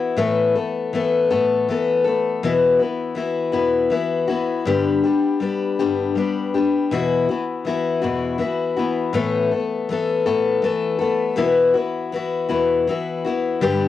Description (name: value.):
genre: rock.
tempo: 54 BPM (dotted quarters).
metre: 6/8.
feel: straight.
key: unclear.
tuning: A4 = 441 Hz.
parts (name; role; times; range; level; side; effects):
picked steel-string acoustic guitar; solo; 0.0-13.9 s; E2 to A4; -18 LUFS; left 4 dB; cassette tape.
room: moderate booth ambience, RT60 0.2 s.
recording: home recording on cassette.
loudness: -18 LUFS.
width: side -12 dB against mid.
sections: 0.0-13.9 A section.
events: none.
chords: 0.2 Asus2; 2.4 Esus2; 4.7 G; 6.9 Esus2; 9.1 Asus2; 11.4 Esus2.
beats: | 0.17 1.29 | 2.41 3.53 | 4.65 5.78 | 6.90 8.02 | 9.14 10.26 | 11.38 12.50 | 13.62.